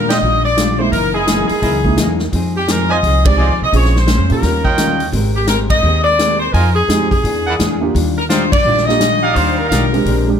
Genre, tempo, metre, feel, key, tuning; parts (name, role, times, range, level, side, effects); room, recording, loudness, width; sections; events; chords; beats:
jazz, big band swing; 171 BPM; 4/4; swing 63% on 8ths; Eb major; A4 = 441 Hz
clear saxophone section; melody; 0.0-10.3 s; G4 to Eb5; -17 LUFS; left 1 dB
vintage hollow-body jazz guitar; accompaniment; 0.0-10.3 s; Gb2 to C5; -21 LUFS; left 5 dB
upright bass; bass; 0.0-10.4 s; Gb1 to Bb2; -18 LUFS; equal
warm trumpet section; stabs; 0.1-9.9 s; Eb4 to Ab5; -21 LUFS; right 4 dB
swinging big-band drum kit; drums; 0.1-10.2 s; hi-hat, kick drum, ride cymbal, snare drum; -19 LUFS; equal
dark grand piano; accompaniment; 0.8-4.4, 6.9-10.4 s; Ab3 to Ab4; -20 LUFS; right 4 dB
light reverb; close, detailed microphones; -12 LUFS; side -8 dB against mid
0.0-10.4 A section
band accent 0.1, 3.2, 5.7, 8.5
0.0 Ebmaj9; 0.9 Gb13; 2.3 Fm7; 3.7 Bbm9; 4.4 Eb9; 5.1 Abmaj9; 6.5 Fm7; 7.2 E7#11; 7.9 Ebmaj9
0.23 0.57 | 0.93 1.27 1.62 1.98 | 2.33 2.68 3.03 3.38 | 3.73 4.08 4.43 4.78 | 5.13 5.48 5.83 6.19 | 6.54 6.89 7.24 7.59 | 7.95 8.30 8.65 9.00 | 9.35 9.70 10.05